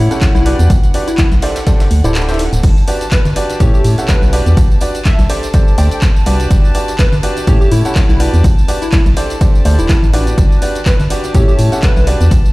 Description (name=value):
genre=piano house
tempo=124 BPM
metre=4/4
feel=swing 56% on 16ths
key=G major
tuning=A4 = 440 Hz
part: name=plucky unison lead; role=melody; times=0.0-12.1 s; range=E4 to G5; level=-22 LUFS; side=equal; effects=digital delay
part: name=clear studio violin section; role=sustained chords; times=0.0-12.5 s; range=F#5 to A5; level=-28 LUFS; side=right 1 dB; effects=sidechain pumping
part: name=clear grand piano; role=riff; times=0.0-12.3 s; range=C#4 to F#5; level=-20 LUFS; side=equal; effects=sidechain pumping
part: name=organ-like FM bass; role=bass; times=0.0-12.4 s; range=D1 to A2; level=-12 LUFS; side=equal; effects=sidechain pumping
part: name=breakbeat sampler-style drum kit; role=drums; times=0.1-12.4 s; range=hi-hat, ride cymbal, snare drum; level=-30 LUFS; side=equal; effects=none
part: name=punchy analog drum machine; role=drums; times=0.1-12.5 s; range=crash cymbal, handclaps, hi-hat, tambourine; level=-24 LUFS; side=equal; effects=none
part: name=electronic kick drum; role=drums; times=0.2-12.4 s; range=none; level=-12 LUFS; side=equal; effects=none
part: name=tambourine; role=percussion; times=2.6-12.5 s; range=none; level=-35 LUFS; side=right 6 dB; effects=none
room=little or no reverb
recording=played on a big sound system in a bare room, large studio reverb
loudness=-9 LUFS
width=side -20 dB against mid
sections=0.0-12.5 A section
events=break 2.2-2.6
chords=0.5 Gmaj7/B; 1.4 D7sus4; 2.6 Gmaj7; 3.6 A7; 4.3 Gmaj7/B; 5.3 D7sus4; 6.5 Gmaj7; 7.5 A7; 8.2 Gmaj7/B; 9.2 D7sus4; 10.4 Gmaj7; 11.3 A7